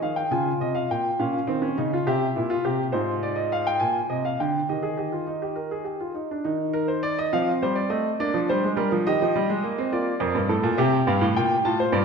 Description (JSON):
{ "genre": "classical, baroque-style 3-part fugue for grand piano", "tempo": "69 BPM (dotted quarters)", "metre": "6/8", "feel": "straight", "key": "Eb major", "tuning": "A4 = 440 Hz", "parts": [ { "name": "warm baby grand piano", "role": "solo", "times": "0.0-12.0 s", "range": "F2 to A5", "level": "-22 LUFS", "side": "equal", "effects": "none" } ], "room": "wet recital hall reverb, RT60 1.4 s", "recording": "none", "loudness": "-22 LUFS", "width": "side -5 dB against mid", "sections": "0.0-6.4 A section; 6.4-12.0 B section", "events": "none", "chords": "0.3 Db; 1.2 Bbmadd11; 2.1 C; 2.9 Fm/Ab; 3.8 Bb7; 4.7 Eb; 6.4 Eb5; 7.3 F7; 8.2 Bb7; 9.0 Eb; 9.9 Bb; 10.8 C7" }